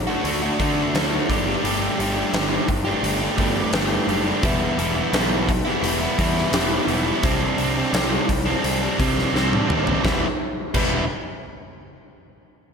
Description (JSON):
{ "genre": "quiet-loud alternative rock", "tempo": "86 BPM", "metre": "4/4", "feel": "straight", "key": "E minor", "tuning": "A4 = 441 Hz", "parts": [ { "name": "overdriven electric guitar", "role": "riff", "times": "0.1-11.0 s", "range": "C3 to G4", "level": "-22 LUFS", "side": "right 1 dB", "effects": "none" }, { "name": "fuzz picked electric bass", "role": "bass", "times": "0.2-11.1 s", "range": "E1 to D3", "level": "-27 LUFS", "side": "equal", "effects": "overdrive" }, { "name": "huge arena drum kit", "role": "drums", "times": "0.2-10.9 s", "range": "crash cymbal, hi-hat, kick drum, snare drum, toms", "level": "-24 LUFS", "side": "equal", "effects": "none" } ], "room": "moderate lush hall reverb, RT60 2.0 s", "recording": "big arena sound", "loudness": "-19 LUFS", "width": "side -6 dB against mid", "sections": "0.0-10.0 A section; 10.0-12.7 B section", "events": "drum fill 9.3-10.0", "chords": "0.0 D; 1.3 Gsus2; 4.4 Em; 7.2 Csus2; 10.0 Em" }